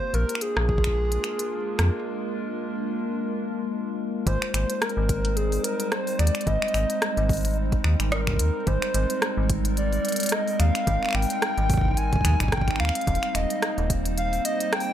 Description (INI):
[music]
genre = IDM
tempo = 109 BPM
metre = 4/4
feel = swing 56% on 16ths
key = Ab lydian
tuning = A4 = 439 Hz
[part]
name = warbly nostalgic lead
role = melody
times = 0.0-14.9 s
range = Ab4 to Ab5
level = -28 LUFS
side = equal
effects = chorus, analog delay
[part]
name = warbly tape-like pad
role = sustained chords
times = 0.0-14.9 s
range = G3 to C5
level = -30 LUFS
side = equal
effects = chorus, built-in reverb
[part]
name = metallic FM bass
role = bass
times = 0.1-14.4 s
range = Eb1 to F2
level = -24 LUFS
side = equal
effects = none
[part]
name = organic electronic drum kit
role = drums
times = 0.1-14.9 s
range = finger snaps, hi-hat, rim click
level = -28 LUFS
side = equal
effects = studio reverb
[part]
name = electronic kick drum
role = drums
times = 0.7-1.0, 4.3-14.0 s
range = none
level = -26 LUFS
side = equal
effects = studio reverb
[sound]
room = light reverb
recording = echo-heavy mix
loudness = -22 LUFS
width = side -11 dB against mid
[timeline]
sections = 0.0-4.3 A section; 4.3-14.9 B section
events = break 2.1-4.3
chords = 0.0 Bb7; 4.3 Abmaj7; 13.1 Eb6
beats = 0.41 0.96 1.51 | 2.06 2.62 3.17 3.72 | 4.27 4.82 5.37 5.92 | 6.47 7.02 7.57 8.12 | 8.67 9.22 9.77 10.32 | 10.87 11.42 11.97 12.52 | 13.07 13.62 14.18 14.73